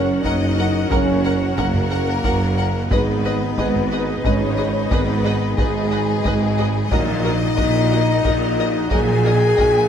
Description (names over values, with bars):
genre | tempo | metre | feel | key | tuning
cinematic, epic orchestral film score | 90 BPM | 3/4 | straight | G# minor | A4 = 442 Hz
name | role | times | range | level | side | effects
rich chamber violin section | second line | 0.0-9.9 s | G#4 to G#5 | -28 LUFS | left 6 dB | none
dark French horn section | sustained chords | 0.0-9.9 s | G#3 to G#4 | -21 LUFS | left 3 dB | none
rich symphonic string section | sustained chords | 0.0-9.9 s | C#4 to F#5 | -28 LUFS | equal | none
mellow tuba | bass | 0.0-9.9 s | F#1 to A#1 | -25 LUFS | right 3 dB | none
rich studio cello section | bass | 0.0-9.9 s | F#2 to A#2 | -24 LUFS | right 2 dB | none
rich symphonic double bass section | bass | 0.0-9.9 s | F#1 to A#1 | -25 LUFS | right 4 dB | none
rich symphonic viola section | accompaniment | 0.2-9.7 s | F#4 to B4 | -30 LUFS | right 2 dB | none
taiko ensemble | drums | 0.2-9.9 s | none | -25 LUFS | equal | none
rich studio violin section | melody | 0.3-9.7 s | D#5 to F#5 | -31 LUFS | left 5 dB | none
dark trombone section | sustained chords | 0.9-9.1 s | C#3 to A#3 | -31 LUFS | right 2 dB | none
room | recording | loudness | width
moderate scoring stage reverb, RT60 1.7 s | none | -16 LUFS | side -8 dB against mid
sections
0.0-9.9 A section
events
none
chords
0.0 F#; 2.9 G#m; 6.9 D#m/A#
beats
0.23 | 0.90 1.57 2.24 | 2.90 3.57 4.24 | 4.91 5.57 6.24 | 6.91 7.57 8.24 | 8.91 9.57